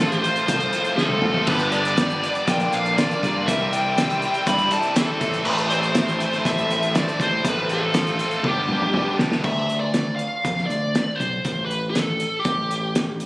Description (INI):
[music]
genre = indie rock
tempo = 120 BPM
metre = 4/4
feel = straight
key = unclear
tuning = A4 = 440 Hz
[part]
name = dark smooth lead guitar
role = melody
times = 0.0-13.1 s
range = G4 to B5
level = -23 LUFS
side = equal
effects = overdrive
[part]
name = soft string machine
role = sustained chords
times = 0.0-9.4 s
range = G4 to D6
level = -32 LUFS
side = equal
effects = ensemble chorus
[part]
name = crunchy overdriven guitar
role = riff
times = 0.0-9.4 s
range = G2 to G4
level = -25 LUFS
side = equal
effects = none
[part]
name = growling fingered electric bass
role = bass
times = 0.0-13.2 s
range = G1 to G2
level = -27 LUFS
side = equal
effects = overdrive
[part]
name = cloth-damped thuddy drum kit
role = drums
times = 0.1-13.3 s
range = crash cymbal, hi-hat, kick drum, snare drum, toms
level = -24 LUFS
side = equal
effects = none
[sound]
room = light reverb, small room ambience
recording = recorded on a phone in the room, studio reverb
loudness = -19 LUFS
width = side -20 dB against mid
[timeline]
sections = 0.0-9.4 A section; 9.4-13.3 B section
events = drum fill 1.0-1.5, 8.5-9.4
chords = 0.0 F/A; 1.5 G; 2.5 Bb; 3.5 Cadd9; 5.2 Am; 7.5 F/A; 8.5 G; 9.4 Dm; 11.4 A7(no3)